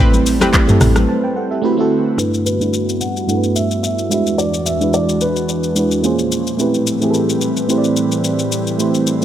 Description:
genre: amapiano.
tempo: 109 BPM.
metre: 4/4.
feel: swing 55% on 16ths.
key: A dorian.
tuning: A4 = 440 Hz.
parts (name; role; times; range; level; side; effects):
mellow FM electric piano; accompaniment; 0.0-9.2 s; G2 to A5; -17 LUFS; right 2 dB; chorus, low-pass filter.
airy breathy pad; sustained chords; 0.0-9.2 s; E2 to C5; -21 LUFS; equal; chorus, sidechain pumping, low-pass filter.
analog pluck; stabs; 0.0-0.5 s; C4 to B4; -22 LUFS; left 1 dB; chorus, digital delay.
woody log drum bass; bass; 0.0-1.1 s; G1 to A1; -16 LUFS; equal; none.
afro-pop drum kit; drums; 0.1-9.2 s; handclaps, hi-hat, kick drum, rim click, shaker, toms; -18 LUFS; left 1 dB; none.
congas; percussion; 0.1-1.1 s; none; -22 LUFS; left 4 dB; none.
warm grand piano; melody; 2.2-6.0 s; B4 to F#5; -22 LUFS; equal; low-pass filter, digital delay.
room: light reverb, digital ambience.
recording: none.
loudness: -14 LUFS.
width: side -11 dB against mid.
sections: 0.0-2.2 A section; 2.2-9.2 B section.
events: drop 0.0-2.2; break 1.1-2.2.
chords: 0.0 Am9; 1.6 D13; 2.2 Gmaj13; 4.1 E9; 6.0 Bbm9; 6.6 Am9.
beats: 0.54 1.09 1.64 | 2.19 2.74 3.29 3.84 | 4.39 4.94 5.49 6.04 | 6.59 7.14 7.69 8.24 | 8.79.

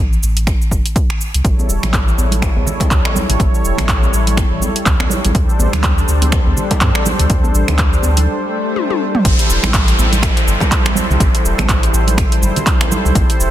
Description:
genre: afro house.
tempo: 123 BPM.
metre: 4/4.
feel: swing 58% on 16ths.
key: A minor.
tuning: A4 = 439 Hz.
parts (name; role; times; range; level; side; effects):
warm sub bass; bass; 0.0-13.5 s; E1 to G2; -16 LUFS; equal; sidechain pumping.
deep house drum kit; drums; 0.1-13.5 s; finger snaps, handclaps, hi-hat, shaker, toms; -20 LUFS; equal; overdrive.
electronic kick drum; drums; 0.5-13.3 s; none; -15 LUFS; equal; overdrive.
warm analog pad; sustained chords; 1.4-13.5 s; G3 to C#5; -21 LUFS; left 1 dB; chorus, tremolo, sidechain pumping.
djembe; percussion; 1.6-13.3 s; none; -27 LUFS; left 2 dB; none.
congas; percussion; 1.8-13.1 s; none; -24 LUFS; right 5 dB; none.
swell and downlifter; sound effects; 8.4-13.2 s; none; -22 LUFS; left 1 dB; none.
room: light reverb, digital ambience.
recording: dense, heavily limited modern master.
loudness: -12 LUFS.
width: side -12 dB against mid.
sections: 0.0-9.2 A section; 9.2-13.5 B section.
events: break 8.3-9.2; swell 8.4-9.2; drum fill 8.8-9.2; drop 9.2-13.5.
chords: 0.0 N.C.; 1.4 A7; 5.3 D7sus4; 9.2 Am7.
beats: 0.47 0.96 | 1.45 1.93 2.42 2.91 | 3.40 3.88 4.37 4.86 | 5.35 5.84 6.32 6.81 | 7.30 7.79 8.28 8.76 | 9.25 9.74 10.23 10.71 | 11.20 11.69 12.18 12.66 | 13.15.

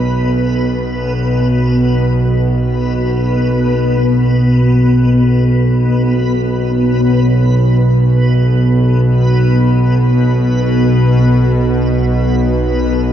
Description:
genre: dark ambient drone.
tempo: free time.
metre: none.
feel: none.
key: unclear.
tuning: A4 = 440 Hz.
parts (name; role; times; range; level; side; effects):
bowed-like drone; drone; 0.0-13.1 s; B1 to B2; -11 LUFS; equal; built-in reverb.
backwards swelling texture; texture; 0.0-13.1 s; B3 to B4; -18 LUFS; left 1 dB; built-in reverb.
room: wet cathedral reverb, RT60 6.3 s.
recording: dark, warm production, nothing above 7.6 kHz.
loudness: -10 LUFS.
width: side -10 dB against mid.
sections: 0.0-4.0 A section; 4.0-13.1 B section.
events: none.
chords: none.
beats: free time.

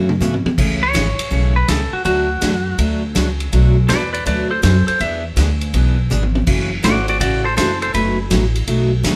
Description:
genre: country, western swing.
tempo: 163 BPM.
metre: 4/4.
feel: swing 66% on 8ths.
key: A major.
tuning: A4 = 440 Hz.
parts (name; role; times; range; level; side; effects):
picked steel-string acoustic guitar; accompaniment; 0.0-9.2 s; B2 to G#4; -24 LUFS; equal; none.
upright bass; bass; 0.0-9.2 s; F#1 to G#2; -20 LUFS; equal; none.
vintage drum kit; drums; 0.1-9.2 s; crash cymbal, hi-hat, kick drum, ride cymbal, snare drum, toms; -24 LUFS; equal; none.
clean lap steel guitar; second line; 0.8-8.2 s; F#4 to E5; -22 LUFS; equal; none.
room: moderate stone room reverb, RT60 1.1 s.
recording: band playing live in one room.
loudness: -17 LUFS.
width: mono.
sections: 0.6-9.2 A section.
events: drum fill 0.0-0.6, 6.1-6.5; electric slide guitar solo 0.6-9.2.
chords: 0.0 A6; 0.6 Amaj7; 2.1 D; 3.5 Bm7; 5.0 E7; 6.5 F#m7; 7.9 B7/F#.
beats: 0.21 | 0.58 0.95 1.31 1.68 | 2.05 2.42 2.79 3.16 | 3.52 3.89 4.26 4.63 | 5.00 5.37 5.73 6.10 | 6.47 6.84 7.21 7.57 | 7.94 8.31 8.68 9.05.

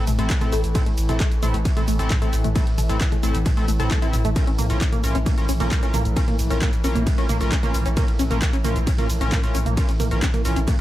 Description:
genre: driving peak-time techno.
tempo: 133 BPM.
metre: 4/4.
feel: straight.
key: unclear.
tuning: A4 = 435 Hz.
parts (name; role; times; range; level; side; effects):
sync-sweep polysynth; stabs; 0.0-10.6 s; C4 to Bb4; -29 LUFS; equal; chorus, sidechain pumping, tape echo.
analog drone; drone; 0.0-10.8 s; A2 to E3; -30 LUFS; equal; chorus, sidechain pumping.
tight sequenced synth; riff; 0.1-10.8 s; A3 to A4; -28 LUFS; equal; chorus, phaser, tube saturation, sidechain pumping, analog delay.
warm sub bass; bass; 0.1-10.7 s; A1 to Bb1; -23 LUFS; equal; overdrive, sidechain pumping, low-pass filter.
dusty soul sampler-style drum kit; drums; 0.1-10.8 s; none; barely audible; none; none.
punchy analog drum machine; drums; 0.1-10.8 s; handclaps, hi-hat, ride cymbal, shaker, toms; -29 LUFS; right 1 dB; dub echo.
electronic kick drum; drums; 0.3-10.8 s; none; -22 LUFS; equal; none.
room: little or no reverb.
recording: echo-heavy mix.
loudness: -18 LUFS.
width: side -14 dB against mid.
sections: 0.0-10.8 A section.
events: none.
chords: 0.0 Am; 4.4 Bbm.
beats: 0.30 | 0.75 1.20 1.65 2.10 | 2.56 3.01 3.46 3.91 | 4.36 4.81 5.26 5.71 | 6.17 6.62 7.07 7.52 | 7.97 8.42 8.87 9.32 | 9.77 10.22 10.68.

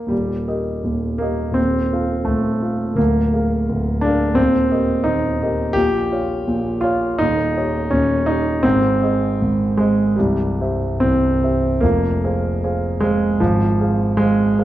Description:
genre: classical, romantic character piece for solo piano.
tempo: 69-89 BPM.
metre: 2/4.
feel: rubato.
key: Eb major, F minor from 5.8 s.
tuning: A4 = 440 Hz.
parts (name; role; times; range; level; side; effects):
warm grand piano; solo; 0.0-14.6 s; C1 to F5; -16 LUFS; equal; none.
room: wet recital hall reverb, RT60 1.5 s.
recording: dark, warm production.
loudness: -16 LUFS.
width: side -14 dB against mid.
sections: 0.1-11.8 A section; 11.8-14.6 B section.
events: none.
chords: 0.1 Eb; 1.6 F7/Eb; 3.0 Bb7/D; 4.4 Eb; 5.8 Bbm; 7.2 Eb7; 8.6 Ab; 10.2 C; 11.8 Fm; 13.4 Fm/Ab.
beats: | 0.11 0.85 | 1.58 2.28 | 2.99 3.69 | 4.38 5.05 | 5.75 6.46 | 7.19 7.92 | 8.64 9.39 | 10.17 11.02 | 11.83 12.64 | 13.42 14.20.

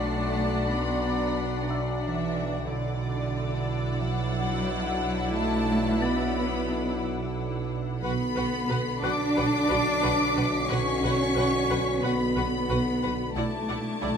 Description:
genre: cinematic, suspense film score.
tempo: 90 BPM.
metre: 4/4.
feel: straight.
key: B minor.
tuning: A4 = 442 Hz.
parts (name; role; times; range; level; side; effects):
warm symphonic violin section; melody; 0.0-14.1 s; F#5; -40 LUFS; left 4 dB; none.
warm symphonic violin section; second line; 0.0-14.2 s; D5 to D6; -32 LUFS; left 2 dB; none.
warm symphonic viola section; accompaniment; 0.0-14.1 s; D4 to D5; -34 LUFS; equal; none.
mellow French horn section; sustained chords; 0.0-14.2 s; D3 to F#4; -33 LUFS; left 4 dB; none.
dark symphonic cello section; bass; 0.0-14.2 s; D3 to D4; -29 LUFS; right 2 dB; none.
warm symphonic double bass section; bass; 0.0-14.1 s; B1; -32 LUFS; right 4 dB; none.
overtone-sweeping drone; drone; 0.0-14.2 s; B1; -35 LUFS; equal; chorus, built-in reverb.
small celesta; texture; 0.0-13.4 s; E5 to A6; -41 LUFS; left 7 dB; none.
warm chamber violin section; texture; 0.0-14.2 s; D6 to C7; -41 LUFS; left 3 dB; none.
room: moderate scoring stage reverb, RT60 2.1 s.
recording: none.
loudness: -24 LUFS.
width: side -7 dB against mid.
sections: 0.0-14.2 A section.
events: none.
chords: 0.0 Bm; 13.4 Dsus2/B.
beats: | 0.03 0.69 1.36 2.03 | 2.69 3.36 4.03 4.69 | 5.36 6.03 6.69 7.36 | 8.03 8.69 9.36 10.03 | 10.69 11.36 12.03 12.69 | 13.36 14.03.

